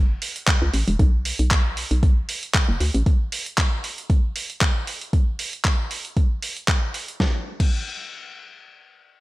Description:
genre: deep house.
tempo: 116 BPM.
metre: 4/4.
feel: swing 54% on 16ths.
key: F# minor.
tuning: A4 = 440 Hz.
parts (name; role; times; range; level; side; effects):
hollow knocking FM bass; bass; 0.0-3.0 s; E1 to D2; -22 LUFS; equal; sidechain pumping.
dusty soul sampler-style drum kit; drums; 0.2-7.7 s; crash cymbal, handclaps, hi-hat, snare drum; -25 LUFS; equal; studio ambience, gated reverb.
electronic kick drum; drums; 0.5-7.7 s; none; -19 LUFS; equal; studio ambience.
room: little or no reverb.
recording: bright 1980s-style digital production.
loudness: -20 LUFS.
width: side -19 dB against mid.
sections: 0.0-7.2 A section; 7.2-9.2 B section.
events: none.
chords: none.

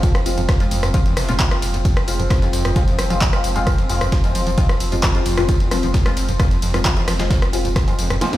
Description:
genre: driving peak-time techno.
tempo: 132 BPM.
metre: 4/4.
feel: straight.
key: F minor.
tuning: A4 = 441 Hz.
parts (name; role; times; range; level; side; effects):
screaming distorted acid line; riff; 0.0-8.4 s; E2 to F3; -25 LUFS; equal; distortion, analog chorus, sidechain pumping, ping-pong delay.
filtered dub chord stab; stabs; 0.0-8.3 s; Ab3 to F4; -25 LUFS; left 2 dB; phaser, lush chorus, cassette tape, sidechain pumping, ping-pong delay.
warm sub bass; bass; 0.0-8.2 s; F1; -24 LUFS; equal; tube saturation, sidechain pumping, low-pass filter.
analog drone; drone; 0.0-8.4 s; F3 to C4; -28 LUFS; equal; chorus, sidechain pumping.
breakbeat sampler-style drum kit; drums; 0.0-8.3 s; hi-hat, snare drum; -35 LUFS; equal; none.
electronic kick drum; drums; 0.0-7.9 s; none; -17 LUFS; equal; none.
punchy analog drum machine; drums; 0.0-8.4 s; handclaps, hi-hat, ride cymbal, rim click, snare drum, tambourine; -24 LUFS; equal; sidechain pumping on hats, sidechain pumping on cymbals, sidechain pumping on perc.
room: light reverb.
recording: played on a big sound system in a bare room, stone room reverb.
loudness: -16 LUFS.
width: side -15 dB against mid.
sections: 0.0-8.4 A section.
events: drum fill 8.2.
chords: 0.0 Fm.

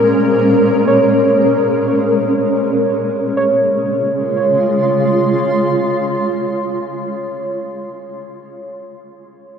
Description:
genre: ambient.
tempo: free time.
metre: none.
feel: none.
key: Db major.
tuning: A4 = 438 Hz.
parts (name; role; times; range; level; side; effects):
granular cloud pad; sustained chords; 0.0-7.2 s; Bb2 to C6; -15 LUFS; equal; built-in reverb.
muted felt-like synth keys; arpeggios; 0.0-9.6 s; Bb4 to Db5; -18 LUFS; right 1 dB; chorus, diffuse ambient delay.
room: wet huge ambient reverb, RT60 7.7 s.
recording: cassette tape, nothing above 10.7 kHz.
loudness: -13 LUFS.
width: side -7 dB against mid.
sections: 0.0-3.4 A section; 3.4-7.4 B section.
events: none.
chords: 0.0 Bbm7; 3.4 Dbmaj7.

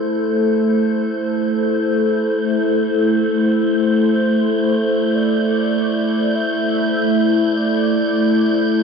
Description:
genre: ambient.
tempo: free time.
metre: none.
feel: none.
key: A minor.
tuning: A4 = 439 Hz.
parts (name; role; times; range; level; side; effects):
warm velvety synth lead; melody; 0.0-8.8 s; C5 to E5; -27 LUFS; left 2 dB; chorus, ping-pong delay.
warbly tape-like pad; sustained chords; 0.0-8.8 s; A3 to C5; -16 LUFS; equal; chorus, built-in reverb, phaser.
wind-like tuned noise texture; texture; 0.0-8.8 s; G6; -27 LUFS; right 1 dB; built-in reverb.
room: wet huge ambient reverb, RT60 8.7 s.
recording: dark, warm production.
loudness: -15 LUFS.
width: side -6 dB against mid.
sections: 0.0-8.8 A section.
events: fade-in on soft synth lead 0.0-8.8.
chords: 0.0 Am.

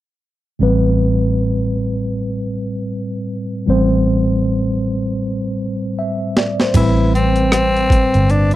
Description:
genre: R&B, neo-soul.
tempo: 78 BPM.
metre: 4/4.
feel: swing 60% on 16ths.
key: A minor.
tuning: A4 = 439 Hz.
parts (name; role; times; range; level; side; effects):
mellow tine electric piano; accompaniment; 0.6-8.6 s; A2 to E5; -18 LUFS; equal; fast stereo tremolo.
vintage muted fingered electric bass; bass; 0.6-8.6 s; G1 to A1; -18 LUFS; equal; none.
boom bap sampler-style drum kit; drums; 6.4-8.6 s; crash cymbal, hi-hat, kick drum, rim click, snare drum; -16 LUFS; equal; overdrive.
growling tenor saxophone; melody; 6.8-8.5 s; C4 to E4; -17 LUFS; left 1 dB; none.
room: little or no reverb.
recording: dry, close 1970s-style studio recording.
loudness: -15 LUFS.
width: side -15 dB against mid.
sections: 0.6-6.7 A section; 6.7-8.6 B section.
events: drum fill 5.2-6.7.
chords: 0.6 Am9.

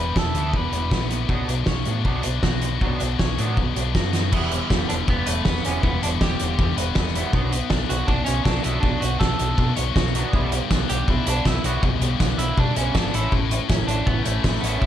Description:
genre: indie rock.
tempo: 160 BPM.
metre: 4/4.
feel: straight.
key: E dorian.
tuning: A4 = 440 Hz.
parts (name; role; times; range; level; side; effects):
electric guitar at the edge of break-up; melody; 0.0-1.1, 4.9-14.9 s; A3 to B4; -29 LUFS; right 3 dB; plate reverb, analog delay.
high-gain distorted guitar; riff; 0.0-14.9 s; A2 to C#5; -28 LUFS; left 11 dB; distortion.
raw garage guitar; riff; 0.0-14.9 s; E3 to A4; -30 LUFS; right 4 dB; overdrive, analog chorus, analog delay.
fingered electric bass; bass; 0.0-14.9 s; E1 to B2; -25 LUFS; equal; none.
loose indie drum kit; drums; 0.2-14.9 s; crash cymbal, hi-hat, kick drum, snare drum; -23 LUFS; equal; none.
tambourine; percussion; 10.7-14.5 s; none; -40 LUFS; right 18 dB; none.
room: light reverb.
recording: none.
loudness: -19 LUFS.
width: side -11 dB against mid.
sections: 0.0-4.3 A section; 4.3-14.9 B section.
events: none.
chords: 0.0 Em7; 1.3 Bmadd9; 4.3 Em7; 7.3 Bmadd9; 10.3 Em7/B; 13.1 Aadd9.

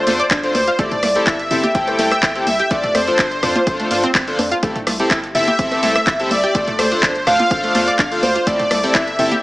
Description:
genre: progressive house.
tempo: 125 BPM.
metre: 4/4.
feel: straight.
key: C major.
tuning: A4 = 440 Hz.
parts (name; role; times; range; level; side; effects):
soft supersaw; melody; 0.0-9.4 s; C5 to G5; -19 LUFS; equal; sidechain pumping, dub echo.
soft synth bell; second line; 0.0-9.4 s; C5 to G5; -25 LUFS; equal; none.
chorused polysynth; stabs; 0.0-9.3 s; C4 to C5; -21 LUFS; left 1 dB; sidechain pumping.
analog pluck; arpeggios; 0.1-9.4 s; A3 to E5; -22 LUFS; equal; analog chorus, sidechain pumping, tape echo.
round analog bass; bass; 0.1-9.3 s; G1 to G2; -28 LUFS; equal; sidechain pumping.
house drum kit; drums; 0.1-9.4 s; handclaps, hi-hat, rim click; -21 LUFS; equal; small room reverb.
electronic congas, bongos and toms; percussion; 0.1-9.4 s; none; -26 LUFS; equal; overdrive, sidechain pumping on toms, small room reverb, sidechain pumping on perc.
electronic kick drum; drums; 0.3-9.1 s; none; -23 LUFS; equal; small room reverb.
room: moderate recital hall reverb, RT60 1.4 s, digital ambience.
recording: small speaker sound.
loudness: -14 LUFS.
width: side -18 dB against mid.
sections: 0.0-9.4 A section.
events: none.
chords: 0.0 Dm7; 0.8 C6; 2.7 F6; 4.6 C6; 6.5 Dm7; 8.5 C6.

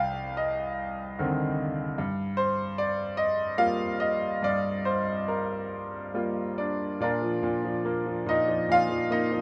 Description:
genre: classical, lyrical solo piano.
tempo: 68-76 BPM.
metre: 3/4.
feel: rubato.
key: G minor.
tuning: A4 = 442 Hz.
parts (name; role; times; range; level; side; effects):
bright grand piano; solo; 0.0-9.4 s; C2 to G5; -28 LUFS; equal; none.
room: light reverb.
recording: close, detailed microphones.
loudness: -28 LUFS.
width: mono.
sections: 0.0-7.0 A section; 7.0-9.4 B section.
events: none.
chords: 0.0 Cmadd9; 2.0 Gm7; 7.0 Bb.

